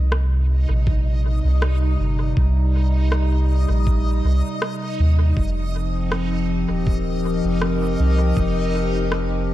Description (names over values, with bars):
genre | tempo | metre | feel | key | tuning
ambient dub | 80 BPM | 4/4 | straight | unclear | A4 = 441 Hz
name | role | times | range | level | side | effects
warbly tape-like pad | sustained chords | 0.0-9.5 s | C3 to Bb4 | -24 LUFS | left 1 dB | chorus, built-in reverb
soft dub sub bass | bass | 0.0-9.5 s | Eb1 to Eb2 | -19 LUFS | equal | none
backwards swelling texture | texture | 0.0-9.5 s | Eb4 to Eb5 | -31 LUFS | left 1 dB | built-in reverb
electronic rim click | drums | 0.1-9.3 s | none | -29 LUFS | equal | overdrive, dub echo
electronic kick drum | drums | 0.9-8.5 s | none | -21 LUFS | equal | none
room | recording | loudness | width
digital ambience | none | -18 LUFS | side -14 dB against mid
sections
0.0-9.5 A section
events
none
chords
0.0 Cm7; 5.4 F9sus4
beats
0.12 0.87 1.62 | 2.37 3.12 3.87 4.62 | 5.37 6.12 6.87 7.62 | 8.37 9.12